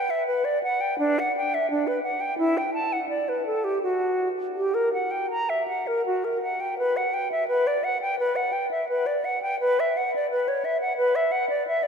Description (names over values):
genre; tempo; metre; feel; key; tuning
classical, baroque-style fantasia for unaccompanied flute; 84 BPM; 4/4; uneven beats, rubato; B minor; A4 = 440 Hz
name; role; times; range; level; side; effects
silver concert flute; solo; 0.0-11.9 s; D4 to A#5; -23 LUFS; equal; none
room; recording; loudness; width
wet cathedral reverb, RT60 7.2 s; minimal, uncompressed stereo recording; -23 LUFS; side -6 dB against mid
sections
0.0-6.8 A section; 6.8-11.9 A section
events
none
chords
none